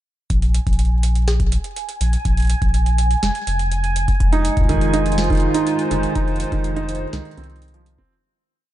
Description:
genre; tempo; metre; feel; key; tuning
IDM; 123 BPM; 4/4; straight; F minor; A4 = 440 Hz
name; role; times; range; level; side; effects
warm sub bass; bass; 0.3-8.0 s; F1 to C2; -19 LUFS; equal; tube saturation
booming analog drum machine; drums; 0.3-8.0 s; hi-hat, snare drum; -29 LUFS; right 2 dB; overdrive, ping-pong delay
electronic kick drum; drums; 0.3-8.1 s; none; -20 LUFS; equal; overdrive
bubbling stepped-filter texture; texture; 0.8-8.1 s; Ab5; -27 LUFS; right 4 dB; chorus, built-in reverb, sidechain pumping
hollow soft pad; sustained chords; 4.2-8.1 s; Ab3 to C5; -24 LUFS; equal; chorus, sidechain pumping
felt-muted upright piano; arpeggios; 4.3-8.1 s; Eb3 to Eb4; -22 LUFS; right 4 dB; ping-pong delay
room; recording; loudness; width
little or no reverb; dark, warm production, nothing above 10.3 kHz; -16 LUFS; side -13 dB against mid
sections
0.3-8.1 groove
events
fade-out 5.5-8.1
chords
0.3 Bb5; 4.2 Fm7

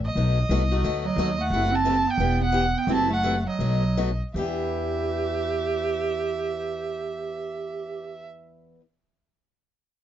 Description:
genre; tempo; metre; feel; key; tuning
acoustic string swing (jazz manouche); 153-180 BPM; 4/4; swing 60% on 8ths; E minor; A4 = 440 Hz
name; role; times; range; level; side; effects
upright bass; bass; 0.0-8.7 s; E1 to E2; -27 LUFS; equal; none
warm violin; melody; 0.1-8.3 s; D#5 to A5; -28 LUFS; right 2 dB; none
picked swing-style acoustic guitar; accompaniment; 0.2-8.8 s; B2 to G4; -31 LUFS; left 6 dB; none
bright clarinet; second line; 1.0-8.3 s; F#3 to G4; -28 LUFS; right 6 dB; none
room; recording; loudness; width
light reverb; dark, warm production, nothing above 7.6 kHz; -22 LUFS; side -10 dB against mid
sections
0.0-1.5 A section; 1.5-4.4 B section; 4.4-7.5 C section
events
slowing down 1.5-4.4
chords
0.2 B7#9; 1.5 F#m7b5; 2.2 Em7; 2.9 F#m7b5; 3.6 B7; 4.4 Em7

